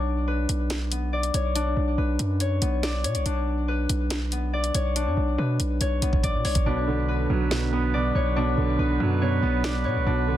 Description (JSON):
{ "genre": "hip hop, drill", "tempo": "141 BPM", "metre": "4/4", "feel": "half-time", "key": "B minor", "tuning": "A4 = 441 Hz", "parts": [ { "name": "concert harp", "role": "arpeggios", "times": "0.0-10.4 s", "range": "B3 to D5", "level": "-28 LUFS", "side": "left 4 dB", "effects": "low-pass filter, digital delay" }, { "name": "hard-hitting 808-style bass", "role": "bass", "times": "0.0-10.4 s", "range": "B1 to B2", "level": "-25 LUFS", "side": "right 1 dB", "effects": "none" }, { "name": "drill drum kit", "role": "drums", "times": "0.5-9.7 s", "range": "hi-hat, kick drum, snare drum", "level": "-27 LUFS", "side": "right 1 dB", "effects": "none" }, { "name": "clear concert grand piano", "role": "accompaniment", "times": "6.7-10.4 s", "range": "B2 to B3", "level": "-27 LUFS", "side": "right 5 dB", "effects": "low-pass filter" }, { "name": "warm woodwind section", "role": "sustained chords", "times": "6.7-10.4 s", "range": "D3 to B4", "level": "-32 LUFS", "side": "right 7 dB", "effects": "none" } ], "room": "small room ambience", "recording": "dense, heavily limited modern master", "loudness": "-22 LUFS", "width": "side -12 dB against mid", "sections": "0.0-10.4 A section", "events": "drum fill 5.8-6.7; hi-hats muted 6.7-10.4", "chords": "0.0 Bmadd9" }